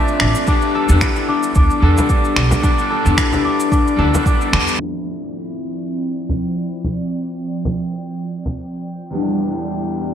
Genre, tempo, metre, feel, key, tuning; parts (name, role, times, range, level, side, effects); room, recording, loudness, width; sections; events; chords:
organic downtempo; 111 BPM; 4/4; swing 55% on 16ths; D dorian; A4 = 440 Hz
electric guitar at the edge of break-up; accompaniment; 0.0-10.1 s; E2 to E5; -22 LUFS; left 3 dB; wide subtle chorus, sidechain pumping, low-pass filter, digital delay
concert harp; arpeggios; 0.0-7.3 s; D4 to A4; -21 LUFS; left 1 dB; digital delay
drifting glass-harmonics texture; texture; 0.0-10.1 s; D5 to G5; -31 LUFS; right 5 dB; chorus, built-in reverb
deep house drum kit; drums; 0.1-10.1 s; crash cymbal, finger snaps, shaker; -22 LUFS; equal; studio ambience, gated reverb
upright bass; bass; 0.2-4.6 s; A1 to E2; -15 LUFS; equal
electronic kick drum; drums; 0.5-4.4 s; -17 LUFS; right 1 dB; studio ambience
frame drum; percussion; 2.0-8.6 s; -23 LUFS; equal
warm analog pad; sustained chords; 4.8-10.1 s; F3 to D5; -24 LUFS; right 3 dB; chorus, sidechain pumping
moderate lush hall reverb, RT60 2.6 s; bright 1980s-style digital production, low-pass filter; -15 LUFS; side -9 dB against mid
0.0-4.8 A section; 4.8-10.1 B section
band accent 4.5; filter sweep on clean electric guitar 4.8-10.1; filter sweep on analog synth pad 4.8-10.1; filter sweep 4.8-10.1
0.5 Em7; 4.8 Dm7; 9.1 Em7